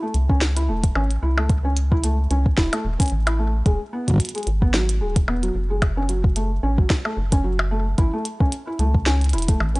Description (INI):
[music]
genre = IDM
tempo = 111 BPM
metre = 4/4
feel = swing 56% on 16ths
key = A major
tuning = A4 = 438 Hz
[part]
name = felt-muted upright piano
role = arpeggios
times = 0.0-9.8 s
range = F#3 to E4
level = -26 LUFS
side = equal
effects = tape echo
[part]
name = rubbery square bass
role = bass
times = 0.1-9.8 s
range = D1 to C#2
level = -21 LUFS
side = equal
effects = none
[part]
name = glitchy drum kit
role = drums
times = 0.1-9.8 s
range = hi-hat, percussion blips, snare drum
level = -26 LUFS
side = equal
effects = studio ambience
[part]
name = electronic kick drum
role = drums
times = 0.3-9.6 s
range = none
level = -18 LUFS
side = equal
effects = studio ambience
[sound]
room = digital ambience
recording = dry, gritty hardware recording, nothing above 10.7 kHz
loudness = -18 LUFS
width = side -23 dB against mid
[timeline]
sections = 0.0-9.8 A section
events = none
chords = 0.0 A; 3.7 Eadd9; 5.8 F#m; 8.0 A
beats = 0.41 0.96 | 1.50 2.04 2.58 3.12 | 3.66 4.20 4.74 5.28 | 5.82 6.36 6.90 7.44 | 7.98 8.52 9.06 9.60